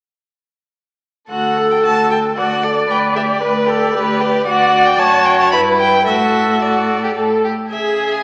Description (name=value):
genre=quick classical-period movement for string quartet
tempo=112 BPM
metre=3/4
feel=rubato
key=D major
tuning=A4 = 440 Hz
part: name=clear violin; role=melody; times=1.3-8.2 s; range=D5 to B5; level=-21 LUFS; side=equal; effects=none
part: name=rich violin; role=second line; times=1.3-8.2 s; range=E4 to B4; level=-20 LUFS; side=equal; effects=none
part: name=warm viola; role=accompaniment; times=1.3-8.2 s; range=G4 to D5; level=-19 LUFS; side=equal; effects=none
part: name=warm cello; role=bass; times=1.3-8.2 s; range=D2 to C#3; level=-26 LUFS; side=equal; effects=none
room=wet recital hall reverb, RT60 1.5 s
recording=recorded in a church or concert hall, small speaker sound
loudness=-15 LUFS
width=mono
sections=1.3-8.2 A section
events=none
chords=1.3 D; 2.9 G/D; 4.5 D; 5.5 Em/G; 6.1 D/A; 7.7 C#m